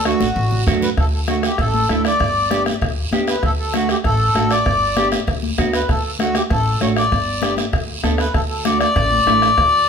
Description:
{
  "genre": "latin, cumbia",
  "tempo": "195 BPM",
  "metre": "4/4",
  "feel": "straight",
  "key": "D major",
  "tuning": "A4 = 439 Hz",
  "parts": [
    { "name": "mellow electric guitar", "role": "melody", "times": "0.0-0.6 s", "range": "D5", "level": "-36 LUFS", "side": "right 4 dB", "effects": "none" },
    { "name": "accordion", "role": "second line", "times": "0.0-9.9 s", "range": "F#4 to D5", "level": "-18 LUFS", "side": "left 2 dB", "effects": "none" },
    { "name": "upright bass", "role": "bass", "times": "0.0-9.9 s", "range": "G1 to F#2", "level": "-23 LUFS", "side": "left 1 dB", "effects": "none" },
    { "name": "mellow electric guitar", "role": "accompaniment", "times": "0.1-9.5 s", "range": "A3 to A4", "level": "-22 LUFS", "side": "right 5 dB", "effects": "none" },
    { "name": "bombo", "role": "percussion", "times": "0.1-9.7 s", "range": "none", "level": "-22 LUFS", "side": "equal", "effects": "none" },
    { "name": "guiro", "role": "percussion", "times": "0.1-9.9 s", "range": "none", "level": "-29 LUFS", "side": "right 4 dB", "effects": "none" },
    { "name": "congas", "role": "percussion", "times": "0.2-9.7 s", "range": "none", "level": "-27 LUFS", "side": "left 8 dB", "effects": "none" }
  ],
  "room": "moderate large studio reverb, RT60 1.0 s",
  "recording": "band playing live in one room",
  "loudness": "-15 LUFS",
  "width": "side -6 dB against mid",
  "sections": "1.0-9.9 A section",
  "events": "drum fill 0.0-1.0; accordion solo 1.0-9.9",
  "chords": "0.0 D; 2.2 G; 3.4 D; 4.7 G; 5.9 D; 7.1 G; 8.3 D",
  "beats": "0.06 0.36 0.67 | 0.97 1.28 1.59 1.90 | 2.20 2.51 2.82 3.12 | 3.43 3.74 4.05 4.35 | 4.66 4.97 5.28 5.58 | 5.89 6.20 6.50 6.81 | 7.12 7.42 7.73 8.04 | 8.35 8.65 8.96 9.27 | 9.57 9.88"
}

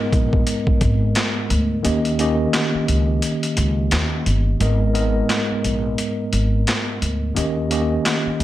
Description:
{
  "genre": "hip hop, boom-bap hip-hop",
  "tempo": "87 BPM",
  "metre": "4/4",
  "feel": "swing 59% on 16ths",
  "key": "G# harmonic minor",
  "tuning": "A4 = 440 Hz",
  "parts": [
    { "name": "tine electric piano", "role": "accompaniment", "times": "0.0-8.4 s", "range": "G#2 to D#5", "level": "-21 LUFS", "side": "equal", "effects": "medium stereo tremolo, cassette tape, high-pass filter, low-pass filter" },
    { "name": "upright bass", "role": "bass", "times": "0.1-8.4 s", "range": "G1 to D#2", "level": "-20 LUFS", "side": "equal", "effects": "none" },
    { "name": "boom bap sampler-style drum kit", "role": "drums", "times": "0.1-8.4 s", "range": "handclaps, hi-hat, kick drum, snare drum", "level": "-22 LUFS", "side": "equal", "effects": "overdrive" }
  ],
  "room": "light reverb",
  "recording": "none",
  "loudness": "-17 LUFS",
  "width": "side -14 dB against mid",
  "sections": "0.0-4.6 A section; 4.6-8.4 A section",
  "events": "kick muted 1.8-4.6, 4.6-8.4",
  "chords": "0.0 G#madd9; 1.8 D#7; 4.6 G#madd9; 7.4 D#7",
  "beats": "0.47 1.16 | 1.85 2.54 3.23 3.92 | 4.61 5.30 5.99 6.67 | 7.37 8.05"
}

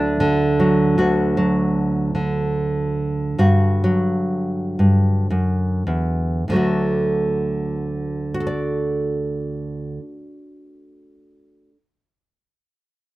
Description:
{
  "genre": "folk, solo fingerstyle acoustic guitar",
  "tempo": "32-52 BPM (dotted quarters)",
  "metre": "6/8",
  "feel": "rubato",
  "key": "D major",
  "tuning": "A4 = 438 Hz",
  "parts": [
    { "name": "nylon-string guitar", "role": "solo", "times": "0.0-11.8 s", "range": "D2 to D5", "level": "-18 LUFS", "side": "equal", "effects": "none" }
  ],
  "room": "little or no reverb",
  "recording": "none",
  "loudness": "-18 LUFS",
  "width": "side -17 dB against mid",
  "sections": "1.0-6.5 A section; 6.5-10.2 B section",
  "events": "slowing down 1.0-6.5",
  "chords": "0.0 D; 3.4 G5; 6.5 D",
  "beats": "| 0.98 2.15 | 3.39 4.79 | 6.48 8.35"
}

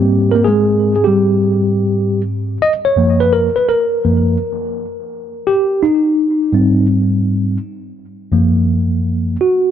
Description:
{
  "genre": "hip hop",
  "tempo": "84 BPM",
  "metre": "4/4",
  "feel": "swing 64% on 16ths",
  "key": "unclear",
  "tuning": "A4 = 438 Hz",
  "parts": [
    { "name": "mellow tine electric piano", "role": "solo", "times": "0.0-9.7 s", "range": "F#2 to D#5", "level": "-12 LUFS", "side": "equal", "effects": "medium stereo tremolo" }
  ],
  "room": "light reverb",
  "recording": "dark, warm production",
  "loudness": "-12 LUFS",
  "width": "side -9 dB against mid",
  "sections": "0.0-2.6 A section; 2.6-9.7 B section",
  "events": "tine electric piano solo 0.0-2.6, 2.6-9.7",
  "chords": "0.0 G#maj9; 2.6 F#maj7; 5.5 G#maj7; 8.3 F#maj7",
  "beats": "0.47 1.18 1.90 | 2.61 3.33 4.04 4.75 | 5.47 6.18 6.90 7.61 | 8.33 9.04"
}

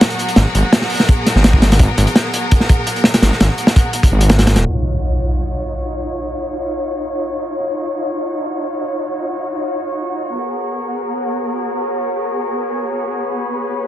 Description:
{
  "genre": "drum and bass, jungle",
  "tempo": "168 BPM",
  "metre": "4/4",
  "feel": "straight",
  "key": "Eb minor",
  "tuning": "A4 = 435 Hz",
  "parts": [
    { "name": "clear studio string section", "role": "sustained chords", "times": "0.0-13.9 s", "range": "Cb4 to Db5", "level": "-21 LUFS", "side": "left 1 dB", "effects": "none" },
    { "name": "crunchy breakbeat drum kit", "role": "drums", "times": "0.0-4.6 s", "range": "hi-hat, kick drum, snare drum", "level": "-12 LUFS", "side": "equal", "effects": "none" },
    { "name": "drifting glass-harmonics texture", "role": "texture", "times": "0.0-13.9 s", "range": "Gb3 to Db6", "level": "-26 LUFS", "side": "right 1 dB", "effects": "chorus, built-in reverb" },
    { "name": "detuned saw bass", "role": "bass", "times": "0.4-4.6 s", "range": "Eb1 to Ab1", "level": "-13 LUFS", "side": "equal", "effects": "none" },
    { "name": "impact", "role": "sound effects", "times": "4.7-6.1 s", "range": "none", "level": "-20 LUFS", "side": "equal", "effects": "none" }
  ],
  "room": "light reverb, studio ambience",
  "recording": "dense, heavily limited modern master, vinyl crackle, low-pass filter",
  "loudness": "-14 LUFS",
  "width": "side -13 dB against mid",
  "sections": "0.0-4.7 A section; 4.7-13.9 B section",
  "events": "impact 4.7-6.1; filter sweep 4.7-13.9",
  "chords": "0.0 Abm9; 4.7 Ebm9; 10.4 Abm9",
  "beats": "0.01 | 0.37 0.73 1.08 1.44 | 1.80 2.16 2.51 2.87 | 3.23 3.58 3.94 4.30 | 4.66 5.01 5.37 5.73 | 6.08 6.44 6.80 7.16 | 7.51 7.87 8.23 8.58 | 8.94 9.30 9.66 10.01 | 10.37 10.73 11.08 11.44 | 11.80 12.16 12.51 12.87 | 13.23 13.58"
}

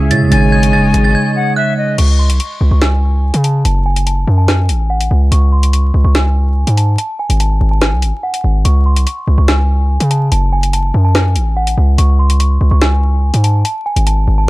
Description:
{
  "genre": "hip hop, drill",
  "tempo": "144 BPM",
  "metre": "4/4",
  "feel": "half-time",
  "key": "unclear",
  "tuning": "A4 = 438 Hz",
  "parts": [
    { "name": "metallic FM bell", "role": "melody", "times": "0.0-14.5 s", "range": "F#5 to A6", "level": "-20 LUFS", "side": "equal", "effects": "chorus, low-pass filter, ping-pong delay" },
    { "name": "mellow tine electric piano", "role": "accompaniment", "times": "0.0-2.0 s", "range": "C#3 to C#5", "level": "-13 LUFS", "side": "right 3 dB", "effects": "low-pass filter" },
    { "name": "warm analog pad", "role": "sustained chords", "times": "0.0-2.0 s", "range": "C#3 to E5", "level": "-20 LUFS", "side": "left 2 dB", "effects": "chorus" },
    { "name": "distorted 808-style bass", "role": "bass", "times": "0.0-14.5 s", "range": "F#1 to C#3", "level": "-11 LUFS", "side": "equal", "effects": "distortion" },
    { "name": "drill drum kit", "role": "drums", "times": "0.1-14.2 s", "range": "crash cymbal, hi-hat, rim click, snare drum", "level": "-18 LUFS", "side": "equal", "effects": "none" },
    { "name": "bright reedy jazz flute", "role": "second line", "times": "0.3-2.0 s", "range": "D#5 to G#5", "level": "-20 LUFS", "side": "left 6 dB", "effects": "ping-pong delay" }
  ],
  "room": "little or no reverb",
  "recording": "dark, warm production, vinyl crackle",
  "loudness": "-10 LUFS",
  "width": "side -19 dB against mid",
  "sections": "0.0-2.0 A section; 2.0-14.5 B section",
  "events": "break 1.1-2.0",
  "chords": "0.3 G#sus4; 2.0 C#5; 3.6 F#m; 5.3 C#5; 7.0 G#5; 8.7 C#5; 10.3 F#m; 12.0 C#5; 13.7 G#5",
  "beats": "| 0.32 0.73 1.15 1.57 | 1.98 2.40 2.82 3.23 | 3.65 4.07 4.48 4.90 | 5.32 5.73 6.15 6.57 | 6.98 7.40 7.82 8.23 | 8.65 9.07 9.48 9.90 | 10.32 10.73 11.15 11.57 | 11.98 12.40 12.82 13.23 | 13.65 14.07 14.48"
}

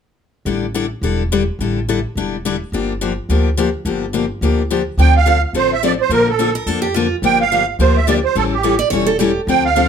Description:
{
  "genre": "acoustic string swing (jazz manouche)",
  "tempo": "213 BPM",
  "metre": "4/4",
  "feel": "swing 58% on 8ths",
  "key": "unclear",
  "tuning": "A4 = 441 Hz",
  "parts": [
    { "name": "picked steel-string acoustic guitar", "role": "accompaniment", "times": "0.5-9.9 s", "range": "D3 to A4", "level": "-18 LUFS", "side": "left 6 dB", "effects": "none" },
    { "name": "upright bass", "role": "bass", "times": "0.5-9.9 s", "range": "E1 to F2", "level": "-20 LUFS", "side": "equal", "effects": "none" },
    { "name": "musette accordion", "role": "melody", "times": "5.0-9.9 s", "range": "G4 to G5", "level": "-15 LUFS", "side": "right 7 dB", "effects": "slapback echo" },
    { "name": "picked steel-string acoustic guitar", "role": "second line", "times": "6.6-9.4 s", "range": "F4 to D5", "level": "-19 LUFS", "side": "right 6 dB", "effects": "none" }
  ],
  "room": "moderate small room reverb, RT60 0.6 s",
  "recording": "none",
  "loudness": "-14 LUFS",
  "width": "side -7 dB against mid",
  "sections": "0.5-5.0 A section; 5.0-9.9 B section",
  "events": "none",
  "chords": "0.5 A7sus4; 2.7 Gm7; 5.0 Dm7; 6.1 Bbmaj7; 7.2 Gm7; 8.4 A7",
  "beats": "| 0.46 0.74 1.03 1.31 | 1.59 1.88 2.16 2.44 | 2.73 3.01 3.29 3.57 | 3.85 4.14 4.42 4.70 | 4.98 5.26 5.54 5.83 | 6.11 6.39 6.67 6.95 | 7.23 7.51 7.79 8.07 | 8.36 8.63 8.92 9.20 | 9.48 9.76"
}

